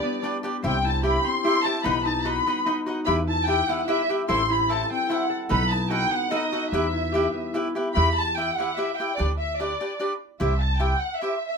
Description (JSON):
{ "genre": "mexican folk, mariachi", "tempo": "148 BPM", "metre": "3/4", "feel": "straight", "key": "E minor", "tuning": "A4 = 442 Hz", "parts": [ { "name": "dark symphonic violin section", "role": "melody", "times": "0.0-11.6 s", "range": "D5 to C6", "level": "-25 LUFS", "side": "equal", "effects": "none" }, { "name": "concert harp", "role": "arpeggios", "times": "0.0-10.4 s", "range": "A3 to A4", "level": "-29 LUFS", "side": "left 2 dB", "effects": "none" }, { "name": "cavaquinho", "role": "accompaniment", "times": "0.2-11.4 s", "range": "D4 to F#5", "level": "-28 LUFS", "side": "left 1 dB", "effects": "none" }, { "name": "upright bass", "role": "bass", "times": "0.6-10.9 s", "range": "A1 to E2", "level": "-26 LUFS", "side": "right 1 dB", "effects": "none" } ], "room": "light reverb", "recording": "minimal, uncompressed stereo recording", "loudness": "-22 LUFS", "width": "side -5 dB against mid", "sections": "0.0-8.0 A section; 8.0-11.6 A section", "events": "none", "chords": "0.0 G; 0.6 C; 1.9 B; 3.1 Em; 4.3 Am; 5.5 B7; 6.7 Em; 9.2 G/D; 10.4 C" }